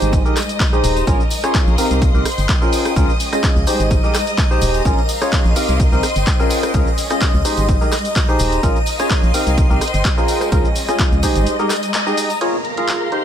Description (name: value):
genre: piano house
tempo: 127 BPM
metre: 4/4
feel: swing 54% on 16ths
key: Bb dorian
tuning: A4 = 438 Hz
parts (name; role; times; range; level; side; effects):
- string machine, violins; sustained chords; 0.0-13.2 s; Bb4 to Eb6; -25 LUFS; equal; ensemble chorus, sidechain pumping
- percussive organ stab; riff; 0.0-13.2 s; C4 to F5; -20 LUFS; equal; lush chorus, cassette tape, sidechain pumping, dub echo
- organ-like FM bass; bass; 0.0-11.5 s; Eb1 to Db2; -18 LUFS; equal; sidechain pumping
- punchy analog drum machine; drums; 0.0-13.2 s; cabasa, handclaps, hi-hat, rim click; -23 LUFS; equal; studio ambience
- tambourine; percussion; 0.0-12.4 s; none; -34 LUFS; left 7 dB; none
- dark symphonic string section; texture; 0.0-13.2 s; Ab3 to C6; -26 LUFS; left 2 dB; sidechain pumping
- electronic kick drum; drums; 0.1-11.3 s; none; -17 LUFS; equal; studio ambience
- downlifter; sound effects; 12.4-13.2 s; none; -30 LUFS; right 2 dB; none
room: digital ambience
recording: none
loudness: -14 LUFS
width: side -9 dB against mid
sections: 0.0-12.4 A section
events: break 11.5-12.4; band accent 11.9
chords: 0.1 Abmaj7; 1.1 Bbm7; 2.0 Cm7; 2.7 Db6; 3.9 Abmaj7; 4.9 Bbm7; 5.8 Cm7; 6.5 Db6; 7.7 Abmaj7; 8.6 Bbm7; 9.6 Cm7; 10.3 Db6; 11.5 Abmaj7; 12.4 Bbm7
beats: 0.13 0.60 | 1.07 1.54 2.02 2.49 | 2.96 3.44 3.91 4.38 | 4.85 5.33 5.80 6.27 | 6.74 7.21 7.69 8.16 | 8.63 9.10 9.58 10.05 | 10.52 10.99 11.47 11.94 | 12.41 12.88